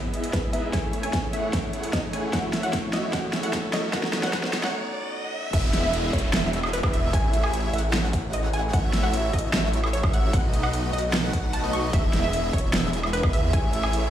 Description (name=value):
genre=future bass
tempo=150 BPM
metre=4/4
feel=half-time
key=E major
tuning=A4 = 440 Hz
part: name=warm grand piano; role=accompaniment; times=0.0-5.6 s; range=G#3 to C#5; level=-35 LUFS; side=left 2 dB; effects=sidechain pumping, dub echo
part: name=airy breathy pad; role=sustained chords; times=0.0-5.5 s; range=A2 to G#4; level=-39 LUFS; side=equal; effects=none
part: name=supersaw chords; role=riff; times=0.0-14.1 s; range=A3 to F#5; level=-31 LUFS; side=right 1 dB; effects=sidechain pumping, low-pass filter
part: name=riser and downlifter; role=sound effects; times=1.2-8.7 s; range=none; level=-36 LUFS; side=left 1 dB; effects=none
part: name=big-room dance drum kit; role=drums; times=0.1-14.0 s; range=crash cymbal, hi-hat, snare drum, woodblock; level=-28 LUFS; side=right 1 dB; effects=overdrive
part: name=wide unison pluck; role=melody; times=0.3-14.1 s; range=B4 to C#6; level=-32 LUFS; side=equal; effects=sidechain pumping, ping-pong delay
part: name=electronic kick drum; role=drums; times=0.3-13.6 s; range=none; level=-26 LUFS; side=equal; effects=overdrive
part: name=airy dreamy lead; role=arpeggios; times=5.5-14.1 s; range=D#5 to F#5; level=-33 LUFS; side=equal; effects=chorus, sidechain pumping, dub echo
part: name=wide detuned saw bass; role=bass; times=5.5-14.1 s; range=E1 to E2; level=-26 LUFS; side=equal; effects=chorus, tube saturation, sidechain pumping
room=digital ambience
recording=played on a big sound system in a bare room, stone room reverb, high-pass filter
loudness=-22 LUFS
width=side -11 dB against mid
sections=0.0-5.5 A section; 5.5-14.1 B section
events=build-up 0.0-5.5; drum fill 0.0-4.7; filter sweep on analog synth pad 0.0-5.5; filter sweep 0.0-5.5; riser 1.2-5.5; break 4.7-5.5; drop 5.5-14.1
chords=0.0 Emaj7; 0.7 Amaj7; 2.3 F#m7/A; 3.9 B7; 5.5 Emaj7; 7.1 Amaj7; 8.7 F#m7/A; 10.3 B7; 11.9 Emaj7; 13.5 Amaj7